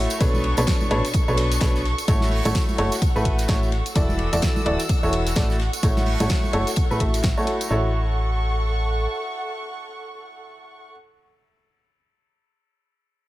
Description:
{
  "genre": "piano house",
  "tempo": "128 BPM",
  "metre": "4/4",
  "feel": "swing 59% on 16ths",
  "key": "A major",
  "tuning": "A4 = 439 Hz",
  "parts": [
    { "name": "muted studio violin section", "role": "sustained chords", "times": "0.0-10.9 s", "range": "D4 to E6", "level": "-30 LUFS", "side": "right 1 dB", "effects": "sidechain pumping" },
    { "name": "clear upright piano", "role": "riff", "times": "0.0-10.9 s", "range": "B2 to E5", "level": "-25 LUFS", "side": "equal", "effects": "sidechain pumping, low-pass filter, digital delay" },
    { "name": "solid FM bass", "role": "bass", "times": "0.0-9.1 s", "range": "D1 to B1", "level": "-24 LUFS", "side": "equal", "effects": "sidechain pumping" },
    { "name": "house drum kit", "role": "drums", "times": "0.1-7.7 s", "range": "hi-hat, snare drum", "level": "-30 LUFS", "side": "equal", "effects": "none" },
    { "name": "tambourine and congas", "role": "percussion", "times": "0.1-7.7 s", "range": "none", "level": "-32 LUFS", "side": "right 2 dB", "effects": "none" },
    { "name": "damped 70s drum kit", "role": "drums", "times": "0.2-7.6 s", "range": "hi-hat, ride cymbal, snare drum", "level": "-37 LUFS", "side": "left 2 dB", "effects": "sidechain pumping on cymbals, high-pass filter on cymbals, sidechain pumping on hats, high-pass filter on hats, high-pass filter on snare, high-pass filter on room" },
    { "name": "electronic kick drum", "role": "drums", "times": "0.2-7.3 s", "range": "none", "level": "-22 LUFS", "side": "equal", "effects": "none" }
  ],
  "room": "studio ambience",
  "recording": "none",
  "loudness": "-19 LUFS",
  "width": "side -16 dB against mid",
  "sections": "0.0-7.7 A section; 7.7-11.5 B section",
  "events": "filter sweep on upright piano 0.0-7.7",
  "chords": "0.2 Bm9; 2.1 A6; 4.0 E9sus4; 5.6 A6"
}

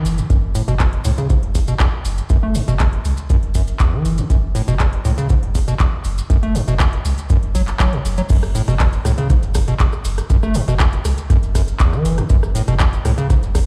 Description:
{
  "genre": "acid house",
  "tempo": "120 BPM",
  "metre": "4/4",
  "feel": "straight",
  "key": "F# minor",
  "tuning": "A4 = 439 Hz",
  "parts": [
    { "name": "overdriven acid bass", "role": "riff", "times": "0.0-13.6 s", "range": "E2 to A3", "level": "-23 LUFS", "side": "equal", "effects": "analog chorus, delay" },
    { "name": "warm sub bass", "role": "bass", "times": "0.1-13.7 s", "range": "E1 to C#2", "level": "-23 LUFS", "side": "equal", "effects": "sidechain pumping" },
    { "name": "booming analog drum machine", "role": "drums", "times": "0.1-13.7 s", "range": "crash cymbal, handclaps, hi-hat, rim click", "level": "-29 LUFS", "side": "equal", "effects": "none" },
    { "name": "maracas", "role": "percussion", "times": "0.1-13.7 s", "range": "none", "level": "-38 LUFS", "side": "equal", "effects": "none" },
    { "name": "electronic kick drum", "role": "drums", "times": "0.3-13.7 s", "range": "none", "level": "-18 LUFS", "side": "equal", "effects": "none" }
  ],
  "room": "little or no reverb",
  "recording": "played on a big sound system in a bare room, stone room reverb",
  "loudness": "-17 LUFS",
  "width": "mono",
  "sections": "0.0-8.3 A section; 8.3-13.7 B section",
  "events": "drop 8.3-13.7",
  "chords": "none"
}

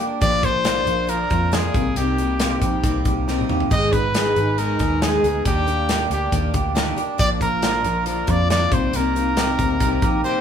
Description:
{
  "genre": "jangly indie pop",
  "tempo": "138 BPM",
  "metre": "4/4",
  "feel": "straight",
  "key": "unclear",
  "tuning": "A4 = 439 Hz",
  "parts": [
    { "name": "picked twelve-string acoustic guitar", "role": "accompaniment", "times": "0.0-10.4 s", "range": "Ab2 to Eb4", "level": "-25 LUFS", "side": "right 2 dB", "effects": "none" },
    { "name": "electric guitar through a small old amp", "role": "arpeggios", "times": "0.0-10.4 s", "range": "Ab2 to Ab4", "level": "-25 LUFS", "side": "left 3 dB", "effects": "tremolo" },
    { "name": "modern studio drum kit", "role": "drums", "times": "0.0-10.1 s", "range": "hi-hat, kick drum, snare drum, splash cymbal, toms", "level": "-23 LUFS", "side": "left 1 dB", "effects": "none" },
    { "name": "clear trumpet", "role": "melody", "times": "0.2-10.4 s", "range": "G4 to Eb5", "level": "-23 LUFS", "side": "equal", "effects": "tape echo" },
    { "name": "vintage muted fingered electric bass", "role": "bass", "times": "0.2-10.2 s", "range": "Ab1 to F2", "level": "-24 LUFS", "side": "equal", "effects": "none" }
  ],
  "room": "wet studio reverb, RT60 0.5 s",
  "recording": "band playing live in one room",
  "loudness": "-17 LUFS",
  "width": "side -8 dB against mid",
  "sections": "0.0-10.4 A section",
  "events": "drum fill 3.3-3.7",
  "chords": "0.2 Bb; 1.7 Cm7; 3.7 Abm; 5.5 Ebmaj7; 7.2 Bb; 8.7 Cm7"
}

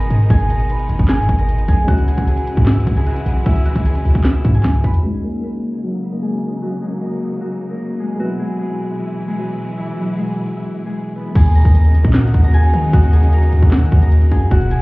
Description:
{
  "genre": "hip hop, trap",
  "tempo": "152 BPM",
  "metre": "4/4",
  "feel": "half-time",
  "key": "unclear",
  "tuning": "A4 = 440 Hz",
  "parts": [
    { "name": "Celtic harp", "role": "melody", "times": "0.0-14.8 s", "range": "E3 to B5", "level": "-22 LUFS", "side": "equal", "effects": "low-pass filter, tape echo" },
    { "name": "dark concert grand piano", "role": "accompaniment", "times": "0.0-11.4 s", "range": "F#3 to G#4", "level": "-31 LUFS", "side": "right 1 dB", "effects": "low-pass filter" },
    { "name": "warm symphonic string section", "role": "sustained chords", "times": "0.0-14.8 s", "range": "B2 to E4", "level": "-26 LUFS", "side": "equal", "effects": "low-pass filter" },
    { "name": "warm 808-style bass", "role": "bass", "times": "0.0-5.0, 11.4-14.8 s", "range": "E1 to D#3", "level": "-14 LUFS", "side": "equal", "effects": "none" },
    { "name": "trap drum kit", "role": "drums", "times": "0.0-5.0, 11.4-14.8 s", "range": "crash cymbal, handclaps, hi-hat, kick drum, snare drum", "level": "-14 LUFS", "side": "equal", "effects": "none" }
  ],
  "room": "little or no reverb",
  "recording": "heard muffled through a wall, club reverb, EQ",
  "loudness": "-14 LUFS",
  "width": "side -22 dB against mid",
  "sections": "0.0-5.0 A section; 5.0-11.4 B section; 11.4-14.8 A section",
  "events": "filter sweep 5.0-11.4",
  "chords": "0.0 G#m; 1.9 C#m; 5.0 D#m7; 8.2 E; 11.4 D#m7"
}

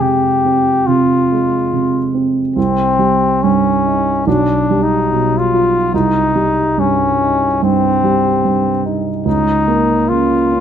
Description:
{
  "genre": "classical, romantic duo for trumpet and grand piano",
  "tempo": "71 BPM",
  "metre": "4/4",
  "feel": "rubato",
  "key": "unclear",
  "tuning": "A4 = 441 Hz",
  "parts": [
    { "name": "mellow trumpet", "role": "melody", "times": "0.0-10.6 s", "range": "C4 to G4", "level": "-15 LUFS", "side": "left 3 dB", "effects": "none" },
    { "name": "dark baby grand piano", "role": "accompaniment", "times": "0.0-10.6 s", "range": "B1 to F4", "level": "-15 LUFS", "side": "right 3 dB", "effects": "none" }
  ],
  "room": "wet stone room reverb, RT60 1.4 s",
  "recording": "none",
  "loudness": "-12 LUFS",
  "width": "side -9 dB against mid",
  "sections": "0.0-10.6 A section",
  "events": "none",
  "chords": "0.0 Fm; 2.6 Cm; 4.3 G7/B; 5.9 Cm; 9.3 Bbm/Db"
}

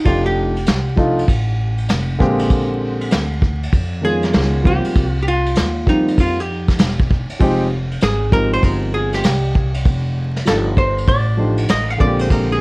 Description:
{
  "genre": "hip hop, jazz-hop",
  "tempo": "98 BPM",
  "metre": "4/4",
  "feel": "swing 65% on 16ths",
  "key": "F dorian",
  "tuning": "A4 = 439 Hz",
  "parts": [
    { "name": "archtop guitar, miked and amplified", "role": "melody", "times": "0.0-12.6 s", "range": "Eb4 to F5", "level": "-21 LUFS", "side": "equal", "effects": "plate reverb, tape echo" },
    { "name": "dark concert grand piano", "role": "accompaniment", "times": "0.0-12.6 s", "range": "D3 to G4", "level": "-20 LUFS", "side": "equal", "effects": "plate reverb" },
    { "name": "upright bass", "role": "bass", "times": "0.1-12.6 s", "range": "E1 to F2", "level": "-20 LUFS", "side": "equal", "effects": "none" },
    { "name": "vintage brush drum kit", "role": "drums", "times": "0.1-12.5 s", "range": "hi-hat, kick drum, ride cymbal, snare drum", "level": "-18 LUFS", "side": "equal", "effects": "none" }
  ],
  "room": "light reverb",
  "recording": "worn, warbling old tape, cassette tape, vinyl crackle, warbly pitch drift",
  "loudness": "-14 LUFS",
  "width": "side -26 dB against mid",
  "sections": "0.0-12.6 A section",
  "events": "hollow-body jazz guitar solo 0.0-12.6",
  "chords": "0.1 F13; 2.2 Bb13; 4.3 Db9; 5.0 C7sus4; 7.4 Fm9; 9.9 F13; 12.0 Bb13"
}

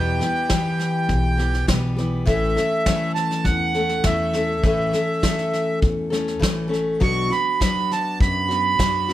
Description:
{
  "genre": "acoustic folk duo or small band",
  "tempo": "101 BPM",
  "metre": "4/4",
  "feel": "straight",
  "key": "A mixolydian",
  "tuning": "A4 = 441 Hz",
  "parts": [
    { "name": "accordion", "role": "melody", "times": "0.0-9.1 s", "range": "E5 to C#6", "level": "-23 LUFS", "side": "right 3 dB", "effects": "none" },
    { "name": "picked steel-string acoustic guitar", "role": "accompaniment", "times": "0.0-9.1 s", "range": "E2 to A4", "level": "-23 LUFS", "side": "left 2 dB", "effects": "none" },
    { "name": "upright bass", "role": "bass", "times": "0.0-9.1 s", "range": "A1 to F#2", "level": "-26 LUFS", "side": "equal", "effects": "none" },
    { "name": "soft brush drum kit", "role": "drums", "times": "0.2-9.1 s", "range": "kick drum, snare drum", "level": "-23 LUFS", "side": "equal", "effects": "none" }
  ],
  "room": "light reverb",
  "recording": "none",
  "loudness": "-18 LUFS",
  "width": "side -13 dB against mid",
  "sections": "0.0-2.3 A section; 2.3-9.1 A section",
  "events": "none",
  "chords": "0.0 Em; 2.3 A; 7.0 Bm"
}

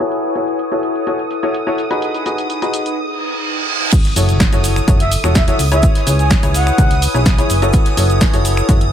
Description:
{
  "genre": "piano house",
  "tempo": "126 BPM",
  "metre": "4/4",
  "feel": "straight",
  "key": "F# dorian",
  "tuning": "A4 = 440 Hz",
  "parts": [
    { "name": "string machine, violins", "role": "sustained chords", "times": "0.0-8.9 s", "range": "D#6", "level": "-25 LUFS", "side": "right 1 dB", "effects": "ensemble chorus, sidechain pumping" },
    { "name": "bright grand piano", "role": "riff", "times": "0.0-8.8 s", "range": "D#4 to C#5", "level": "-20 LUFS", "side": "left 3 dB", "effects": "sidechain pumping, digital delay" },
    { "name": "punchy analog drum machine", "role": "drums", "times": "0.0-8.9 s", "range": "crash cymbal, finger snaps, hi-hat, shaker, snare drum", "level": "-21 LUFS", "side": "right 1 dB", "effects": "none" },
    { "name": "warbly tape-like pad", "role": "texture", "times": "0.0-8.9 s", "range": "D#4 to G#5", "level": "-24 LUFS", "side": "equal", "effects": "chorus, built-in reverb, sidechain pumping" },
    { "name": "reverse cymbal and impact", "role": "sound effects", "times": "3.2-5.8 s", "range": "none", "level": "-22 LUFS", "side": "right 2 dB", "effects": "none" },
    { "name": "electronic kick drum", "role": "drums", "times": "3.9-8.8 s", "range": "none", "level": "-13 LUFS", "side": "equal", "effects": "none" },
    { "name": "gated 80s drum kit", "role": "drums", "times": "3.9-8.8 s", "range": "hi-hat, shaker, snare drum", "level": "-30 LUFS", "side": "equal", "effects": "none" },
    { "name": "solid FM bass", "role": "bass", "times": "4.2-8.9 s", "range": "E1 to C#2", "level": "-16 LUFS", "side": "equal", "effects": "sidechain pumping" },
    { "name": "breathy flute-like synth lead", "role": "melody", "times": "5.0-7.0 s", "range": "E5 to G#5", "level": "-21 LUFS", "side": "right 1 dB", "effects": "wide subtle chorus, digital delay" }
  ],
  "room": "light reverb, small room reverb",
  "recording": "low-pass filter",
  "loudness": "-13 LUFS",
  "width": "side -9 dB against mid",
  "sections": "0.0-3.9 A section; 3.9-8.9 B section",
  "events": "filter sweep 0.0-3.9; reverse cymbal 3.2-3.9; drop 3.9-8.9; impact 3.9-5.8",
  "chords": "0.0 F#m7; 2.0 G#m7; 3.9 F#m7; 5.6 C#m7; 7.5 F#m7"
}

